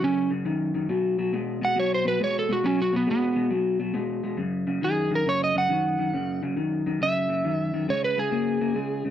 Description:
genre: blues.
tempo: 137 BPM.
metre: 4/4.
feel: swing 67% on 8ths.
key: F# mixolydian.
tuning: A4 = 439 Hz.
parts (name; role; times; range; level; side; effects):
electric slide guitar; melody; 0.0-9.0 s; B3 to F#5; -25 LUFS; right 2 dB; none.
electric guitar through a small old amp; riff; 0.0-9.1 s; F#2 to A#3; -26 LUFS; left 2 dB; none.
room: moderate studio reverb, RT60 0.7 s.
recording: none.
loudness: -23 LUFS.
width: side -10 dB against mid.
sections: 0.0-9.1 A section.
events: none.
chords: 0.0 F#5; 0.9 B5; 4.4 F#5; 7.9 C#5.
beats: 0.01 0.45 | 0.89 1.33 1.76 2.20 | 2.64 3.08 3.51 3.95 | 4.39 4.83 5.26 5.70 | 6.14 6.58 7.01 7.45 | 7.88 8.32 8.76.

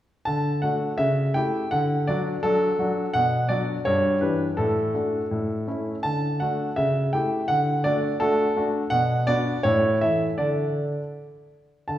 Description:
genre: classical-period piano sonatina.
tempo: 83 BPM.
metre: 2/4.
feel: straight.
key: D major.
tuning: A4 = 438 Hz.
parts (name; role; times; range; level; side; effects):
clear baby grand piano; solo; 0.3-12.0 s; G2 to A5; -21 LUFS; equal; none.
room: wet recital hall reverb, RT60 1.6 s.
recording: heard from further back in the room.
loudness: -21 LUFS.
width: side -12 dB against mid.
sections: 0.3-11.9 A section.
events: none.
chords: 0.3 D; 1.0 A7/C#; 1.7 D; 3.1 Bm; 3.9 Em7/G; 4.6 D/A; 5.3 A; 6.0 D; 6.8 A7/C#; 7.5 D; 8.9 Bm; 9.6 A; 10.4 D5.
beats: | 0.27 1.00 | 1.72 2.44 | 3.14 3.86 | 4.58 5.31 | 6.05 6.77 | 7.50 8.21 | 8.92 9.65 | 10.39 11.13 | 11.88.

